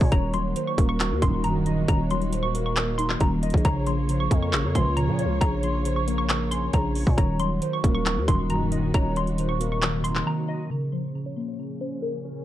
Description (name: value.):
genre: hip hop, trap.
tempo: 136 BPM.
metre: 4/4.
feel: half-time.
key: Bb minor.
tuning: A4 = 440 Hz.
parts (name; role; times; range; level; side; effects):
hollow square pluck; melody; 0.0-12.4 s; Bb4 to Db6; -31 LUFS; equal; chorus, low-pass filter, digital delay.
glassy digital keys; accompaniment; 0.0-12.4 s; Db3 to Eb5; -29 LUFS; left 1 dB; chorus, low-pass filter.
muted symphonic string section; sustained chords; 0.0-12.4 s; Bb2 to Db5; -36 LUFS; right 2 dB; low-pass filter.
growling 808-style bass; bass; 0.0-10.2 s; Eb1 to Bb2; -26 LUFS; equal; none.
trap drum kit; drums; 0.0-10.3 s; handclaps, hi-hat, kick drum; -24 LUFS; equal; overdrive.
warm velvety synth lead; second line; 0.1-10.2 s; Bb4 to Db5; -35 LUFS; right 2 dB; chorus, digital delay.
mellow synth brass; stabs; 1.2-1.9, 4.8-5.4, 8.3-8.9 s; Bb1 to F3; -28 LUFS; right 2 dB; chorus.
room: little or no reverb.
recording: dark, warm production.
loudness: -22 LUFS.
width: side -13 dB against mid.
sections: 0.0-10.7 A section; 10.7-12.4 B section.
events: break 10.3-10.7; filter sweep 10.7-12.4.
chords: 0.1 Ebm; 3.6 Bbm; 7.2 Ebm; 10.7 Bbm.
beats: | 0.12 0.56 1.00 1.44 | 1.88 2.33 2.77 3.21 | 3.65 4.09 4.53 4.97 | 5.41 5.85 6.30 6.74 | 7.18 7.62 8.06 8.50 | 8.94 9.38 9.82 10.27 | 10.71 11.15 11.59 12.03.